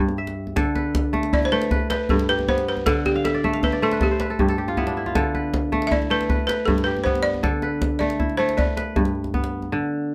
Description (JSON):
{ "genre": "west african traditional, West African string and xylophone music", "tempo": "105 BPM (dotted quarters)", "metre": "12/8", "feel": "straight", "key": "D dorian", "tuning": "A4 = 438 Hz", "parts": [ { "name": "kora", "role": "arpeggios", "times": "0.0-10.1 s", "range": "G2 to G5", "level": "-25 LUFS", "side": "equal", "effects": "none" }, { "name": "djembe", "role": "percussion", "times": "0.1-9.7 s", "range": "none", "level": "-27 LUFS", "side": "equal", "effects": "none" }, { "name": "balafon", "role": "melody", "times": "1.3-9.3 s", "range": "G4 to E5", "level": "-26 LUFS", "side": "equal", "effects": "none" } ], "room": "light reverb", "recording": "close, detailed microphones", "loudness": "-22 LUFS", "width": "mono", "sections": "0.6-9.7 A section", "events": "kora fill 3.1-5.2", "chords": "0.0 Em/G; 0.6 D5; 1.7 G; 2.9 D5; 4.0 G; 5.2 D5; 6.3 G; 7.4 D5; 8.6 G" }